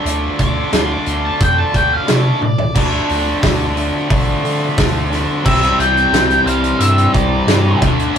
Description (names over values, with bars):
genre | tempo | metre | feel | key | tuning
quiet-loud alternative rock | 89 BPM | 4/4 | straight | D minor | A4 = 439 Hz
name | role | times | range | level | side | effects
bright chamber string section | sustained chords | 0.0-8.2 s | E3 to A5 | -31 LUFS | right 2 dB | none
overdriven electric guitar | riff | 0.0-8.2 s | C3 to F4 | -22 LUFS | left 4 dB | none
tight distorted guitar | riff | 0.0-8.2 s | C3 to D4 | -21 LUFS | right 3 dB | distortion
warm sub bass | bass | 0.0-8.2 s | A1 to D3 | -20 LUFS | equal | none
loose indie drum kit | drums | 0.1-8.2 s | crash cymbal, hi-hat, kick drum, snare drum, toms | -17 LUFS | equal | none
octave-fuzz lead guitar | melody | 0.4-8.2 s | D5 to D6 | -17 LUFS | left 1 dB | distortion
crunchy overdriven guitar | riff | 2.8-8.2 s | C3 to D4 | -23 LUFS | equal | none
room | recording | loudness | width
moderate booth ambience, RT60 0.2 s | rough rehearsal-room recording | -12 LUFS | side -8 dB against mid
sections
0.0-2.8 A section; 2.8-5.5 B section; 5.5-8.2 C section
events
lead electric guitar solo 0.0-2.8; drum fill 2.4-2.8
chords
0.0 Dm; 5.5 Cadd9